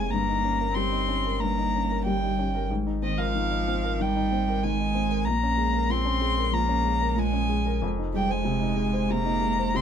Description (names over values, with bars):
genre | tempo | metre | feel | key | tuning
neoclassical piano and strings | 94 BPM | 4/4 | rubato | unclear | A4 = 439 Hz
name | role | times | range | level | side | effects
dark violin | melody | 0.0-9.8 s | Eb5 to C6 | -28 LUFS | left 2 dB | none
warm cello | second line | 0.0-9.8 s | Eb3 to C4 | -30 LUFS | right 8 dB | none
felt-muted upright piano | accompaniment | 0.0-9.8 s | F2 to C5 | -29 LUFS | left 4 dB | none
pure sine sub bass | bass | 0.0-9.8 s | F1 to Bb1 | -30 LUFS | equal | none
room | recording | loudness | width
light reverb | minimal, uncompressed stereo recording | -23 LUFS | side -8 dB against mid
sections
0.0-9.8 A section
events
none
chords
0.1 Eb7/G; 2.7 Abadd9; 5.3 Bbm7; 7.8 Fm7